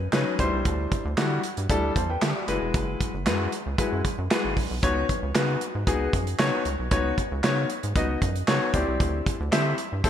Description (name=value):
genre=early-eighties boogie funk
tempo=115 BPM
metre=4/4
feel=straight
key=unclear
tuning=A4 = 439 Hz
part: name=rubbery square bass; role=bass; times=0.0-10.1 s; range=E1 to D3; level=-28 LUFS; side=equal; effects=none
part: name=warm concert grand piano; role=accompaniment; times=0.1-10.1 s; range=F#3 to A5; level=-27 LUFS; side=left 3 dB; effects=tube saturation
part: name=modern studio drum kit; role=drums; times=0.1-10.1 s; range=handclaps, hi-hat, kick drum, snare drum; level=-27 LUFS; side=right 1 dB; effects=none
room=moderate lush hall reverb, RT60 1.8 s, studio reverb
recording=bright 1980s-style digital production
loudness=-23 LUFS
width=side -10 dB against mid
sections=0.0-10.1 A section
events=none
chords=0.4 D9sus4; 2.5 F#9sus4; 4.8 C#9sus4; 8.7 D9sus4